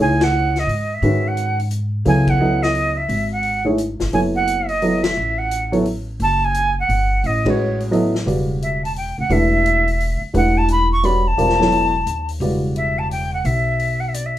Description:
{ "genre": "modal jazz", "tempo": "174 BPM", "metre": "3/4", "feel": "swing 64% on 8ths", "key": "C# minor, E dorian from 8.3 s", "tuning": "A4 = 440 Hz", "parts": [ { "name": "jazz flute", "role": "melody", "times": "0.0-14.4 s", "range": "C#5 to C#6", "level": "-20 LUFS", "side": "right 1 dB", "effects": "none" }, { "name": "warm baby grand piano", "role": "accompaniment", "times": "0.0-13.4 s", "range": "C#3 to D#5", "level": "-20 LUFS", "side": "equal", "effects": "none" }, { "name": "upright bass", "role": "bass", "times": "0.0-14.4 s", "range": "E1 to G#2", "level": "-21 LUFS", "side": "equal", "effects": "none" }, { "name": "vintage drum kit", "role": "drums", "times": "0.2-14.4 s", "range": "hi-hat, kick drum, ride cymbal, snare drum", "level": "-28 LUFS", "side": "left 3 dB", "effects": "none" } ], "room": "moderate studio ambience, RT60 0.5 s", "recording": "heard from further back in the room", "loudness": "-16 LUFS", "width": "side -13 dB against mid", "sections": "0.0-8.3 A section; 8.3-14.4 B section", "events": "band accent 0.2, 2.2, 5.0, 7.4", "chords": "0.0 C#m11; 4.1 F#m11; 8.3 E9sus4", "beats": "0.33 0.67 | 1.02 1.36 1.71 | 2.06 2.40 2.75 | 3.09 3.44 3.78 | 4.13 4.47 4.82 | 5.16 5.51 5.85 | 6.20 6.54 6.89 | 7.24 7.58 7.92 | 8.27 8.62 8.96 | 9.31 9.65 10.00 | 10.34 10.69 11.03 | 11.38 11.72 12.06 | 12.41 12.75 13.10 | 13.44 13.79 14.13" }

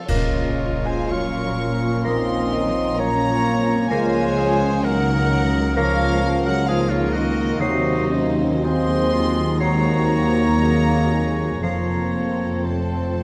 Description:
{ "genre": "classical, slow romantic movement for symphony orchestra", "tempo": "56-66 BPM", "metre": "4/4", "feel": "rubato", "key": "Bb minor", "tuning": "A4 = 440 Hz", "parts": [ { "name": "warm studio violin section", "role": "melody", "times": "0.0-13.2 s", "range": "C5 to Db6", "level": "-31 LUFS", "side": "equal", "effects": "none" }, { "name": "dark studio violin section", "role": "second line", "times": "0.0-13.2 s", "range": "Bb3 to Db5", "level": "-31 LUFS", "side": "equal", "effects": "none" }, { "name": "warm oboe", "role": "second line", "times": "0.0-13.2 s", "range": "Eb4 to F5", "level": "-31 LUFS", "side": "equal", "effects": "none" }, { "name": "mellow French horn section", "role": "sustained chords", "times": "0.0-13.2 s", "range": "C3 to Db4", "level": "-27 LUFS", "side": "equal", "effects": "none" }, { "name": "silver concert flute", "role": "second line", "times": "0.1-12.1 s", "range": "Bb6 to C7", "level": "-34 LUFS", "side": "equal", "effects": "none" }, { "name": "warm clarinet", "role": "second line", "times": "0.1-13.2 s", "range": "F4 to F5", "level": "-33 LUFS", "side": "equal", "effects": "none" }, { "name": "dark studio viola section", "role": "accompaniment", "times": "0.1-13.2 s", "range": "Eb3 to Eb4", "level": "-30 LUFS", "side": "equal", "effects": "none" }, { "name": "warm bassoon", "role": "accompaniment", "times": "0.1-12.0 s", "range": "F3 to Bb3", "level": "-32 LUFS", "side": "equal", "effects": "none" }, { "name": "concert harp", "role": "arpeggios", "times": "0.1-13.2 s", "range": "Bb2 to Bb4", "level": "-32 LUFS", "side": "equal", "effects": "none" }, { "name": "dark studio double bass section", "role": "bass", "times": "0.1-13.2 s", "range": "F1 to Eb2", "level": "-29 LUFS", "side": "equal", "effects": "none" }, { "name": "warm studio cello section", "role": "bass", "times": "0.1-13.2 s", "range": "Db2 to Bb2", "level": "-28 LUFS", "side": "equal", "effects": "none" }, { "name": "clash cymbals and concert bass drum", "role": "percussion", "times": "0.1-2.0 s", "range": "none", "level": "-30 LUFS", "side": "equal", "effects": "none" } ], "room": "wet scoring stage reverb, RT60 1.6 s", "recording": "dark, warm production", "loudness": "-20 LUFS", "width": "mono", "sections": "0.1-13.2 A section", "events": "band accent 0.1-1.1", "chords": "0.1 Bbm; 3.9 Bbm/Db; 7.6 Cdim/Eb; 11.6 F", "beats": "| 0.09 1.11 2.06 2.99 | 3.91 4.85 5.77 6.68 | 7.62 8.64 9.61 10.60 | 11.63 12.65" }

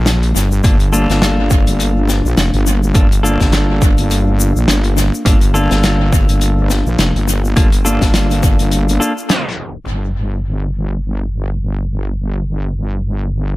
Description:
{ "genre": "glitch hop", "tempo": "104 BPM", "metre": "4/4", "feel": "swing 57% on 16ths", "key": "G minor", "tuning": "A4 = 439 Hz", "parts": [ { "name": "wobble bass", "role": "bass", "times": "0.0-13.6 s", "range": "F1 to Bb1", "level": "-15 LUFS", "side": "equal", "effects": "chorus, tube saturation" }, { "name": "warm soul drum kit", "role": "drums", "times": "0.1-9.8 s", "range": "hi-hat, snare drum", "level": "-19 LUFS", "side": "left 1 dB", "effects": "tape echo" }, { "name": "egg shaker", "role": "percussion", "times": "0.1-9.9 s", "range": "none", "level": "-25 LUFS", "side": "left 4 dB", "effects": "none" }, { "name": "clean electric guitar", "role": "stabs", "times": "0.6-9.1 s", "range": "Bb3 to A4", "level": "-19 LUFS", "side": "left 1 dB", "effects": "vintage 12-bit sampler grit, sidechain pumping, tape echo" }, { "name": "electronic kick drum", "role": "drums", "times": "0.6-8.6 s", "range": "none", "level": "-13 LUFS", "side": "equal", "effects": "none" } ], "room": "light reverb, small room reverb", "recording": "echo-heavy mix, tape stop", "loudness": "-12 LUFS", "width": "side -18 dB against mid", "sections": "0.0-9.9 A section; 9.9-13.6 B section", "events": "band accent 9.3; tape stop 9.3-9.9", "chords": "0.0 Gm7; 9.9 N.C.", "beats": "0.07 | 0.64 1.22 1.80 2.37 | 2.95 3.53 4.10 4.68 | 5.26 5.83 6.41 6.99 | 7.57 8.14 8.72 9.30 | 9.87 10.45 11.03 11.60 | 12.18 12.76 13.34" }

